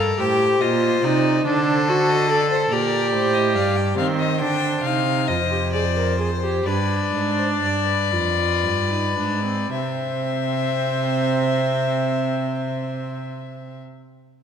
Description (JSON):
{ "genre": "classical, baroque-style fugue for string quartet", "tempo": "36-48 BPM (dotted quarters)", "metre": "6/8", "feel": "straight", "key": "unclear", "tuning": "A4 = 441 Hz", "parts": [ { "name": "rich violin", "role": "melody", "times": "0.0-13.8 s", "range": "C5 to G5", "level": "-25 LUFS", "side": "left 9 dB", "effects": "none" }, { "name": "rich violin", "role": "second line", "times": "0.0-13.8 s", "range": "A4 to D5", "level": "-27 LUFS", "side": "left 3 dB", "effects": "none" }, { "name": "warm viola", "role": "accompaniment", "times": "0.0-13.8 s", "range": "C4 to Bb4", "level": "-23 LUFS", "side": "right 2 dB", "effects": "none" }, { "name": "warm cello", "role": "bass", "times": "0.0-13.8 s", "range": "F2 to Eb3", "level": "-24 LUFS", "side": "right 4 dB", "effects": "none" } ], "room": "wet concert hall reverb, RT60 1.6 s", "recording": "none", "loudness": "-18 LUFS", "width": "side -8 dB against mid", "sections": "0.0-9.7 A section; 9.7-13.1 B section", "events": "slowing down 2.7-9.7", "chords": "0.2 Am7b5; 1.5 D7; 2.7 Gm; 4.0 Cm; 5.3 Dm7/F; 6.7 G7; 9.7 C", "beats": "0.20 | 1.46 2.72 | 3.98 5.29 | 6.66 8.12 | 9.72 11.38" }